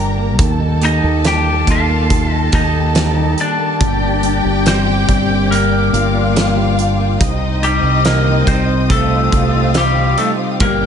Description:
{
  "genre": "pop ballad",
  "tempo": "70 BPM",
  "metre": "4/4",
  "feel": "straight",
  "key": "unclear",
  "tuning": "A4 = 439 Hz",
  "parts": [
    { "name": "warm studio violin section", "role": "second line", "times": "0.0-10.9 s", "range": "Eb4 to Bb5", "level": "-22 LUFS", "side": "left 1 dB", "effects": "none" },
    { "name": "bell-like tine electric piano", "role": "accompaniment", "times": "0.0-10.9 s", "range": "C3 to Bb3", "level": "-20 LUFS", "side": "left 3 dB", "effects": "medium stereo tremolo" },
    { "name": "dark symphonic string section", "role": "sustained chords", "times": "0.0-10.9 s", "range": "Bb3 to Eb6", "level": "-26 LUFS", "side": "left 4 dB", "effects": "none" },
    { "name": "direct-recorded clean electric guitar", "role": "arpeggios", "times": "0.0-10.9 s", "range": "G2 to G4", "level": "-25 LUFS", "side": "right 8 dB", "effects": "none" },
    { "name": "fingered electric bass", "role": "bass", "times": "0.0-10.9 s", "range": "G1 to Eb2", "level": "-18 LUFS", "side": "equal", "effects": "none" },
    { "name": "huge arena drum kit", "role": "drums", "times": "0.4-10.8 s", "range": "hi-hat, kick drum, snare drum", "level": "-19 LUFS", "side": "right 1 dB", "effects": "none" },
    { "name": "lightly driven lead guitar", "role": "melody", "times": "0.8-10.9 s", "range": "G3 to G5", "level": "-18 LUFS", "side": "left 1 dB", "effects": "none" }
  ],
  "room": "light reverb",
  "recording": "nothing above 10.9 kHz",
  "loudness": "-12 LUFS",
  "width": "side -8 dB against mid",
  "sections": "0.0-10.9 A section",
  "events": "none",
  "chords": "0.4 Eb; 3.8 Gm; 7.2 Cm"
}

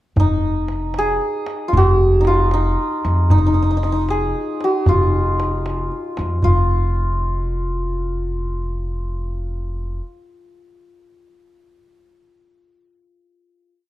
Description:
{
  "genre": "Persian modal ensemble",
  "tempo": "76 BPM (dotted quarters)",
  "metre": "6/8",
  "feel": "straight",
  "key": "unclear",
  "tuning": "A4 = 440 Hz",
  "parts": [
    { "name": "santur", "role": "melody", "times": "0.2-10.0 s", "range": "Eb4 to Ab4", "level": "-20 LUFS", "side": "equal", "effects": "none" },
    { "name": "upright bass", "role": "bass", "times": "0.2-10.0 s", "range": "F1 to F2", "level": "-19 LUFS", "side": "equal", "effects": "none" },
    { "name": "tombak", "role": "percussion", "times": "0.2-6.7 s", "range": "none", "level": "-20 LUFS", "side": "equal", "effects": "none" }
  ],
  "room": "light reverb",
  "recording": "dark, warm production",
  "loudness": "-17 LUFS",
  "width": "side -15 dB against mid",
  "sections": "0.2-6.4 A section; 6.4-9.6 final note",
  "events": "none",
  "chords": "none"
}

